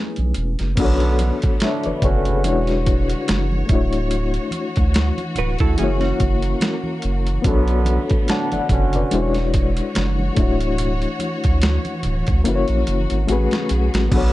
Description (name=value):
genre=R&B, neo-soul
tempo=72 BPM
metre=4/4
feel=swing 56% on 16ths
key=B dorian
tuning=A4 = 436 Hz
part: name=hollow-body jazz guitar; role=second line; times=0.0-7.2 s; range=C#4 to B4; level=-28 LUFS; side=right 8 dB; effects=none
part: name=reed electric piano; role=accompaniment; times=0.0-14.3 s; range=G#3 to A5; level=-23 LUFS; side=left 4 dB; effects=fast tremolo
part: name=saturated sub bass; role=bass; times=0.2-14.3 s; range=D1 to D2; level=-20 LUFS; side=equal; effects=none
part: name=boom bap sampler-style drum kit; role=drums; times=0.2-14.3 s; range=crash cymbal, hi-hat, kick drum, ride cymbal, snare drum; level=-20 LUFS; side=equal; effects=overdrive
part: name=congas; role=percussion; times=0.2-14.3 s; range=none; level=-32 LUFS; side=right 2 dB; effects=none
part: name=warm symphonic string section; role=sustained chords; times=0.8-14.3 s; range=C#3 to C#5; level=-29 LUFS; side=equal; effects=none
part: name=warm trombone section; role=stabs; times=0.8-14.3 s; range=F#2 to F#4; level=-25 LUFS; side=right 4 dB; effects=none
room=little or no reverb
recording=dark, warm production, nothing above 10.9 kHz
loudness=-17 LUFS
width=side -16 dB against mid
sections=0.8-14.1 A section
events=drum fill 12.4-14.1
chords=0.0 Amaj7; 0.8 Bm9; 2.4 E13; 3.7 Dmaj9; 5.8 F#7; 7.4 Bm9; 9.1 E13; 10.4 Dmaj9; 12.4 F#7; 13.3 Amaj13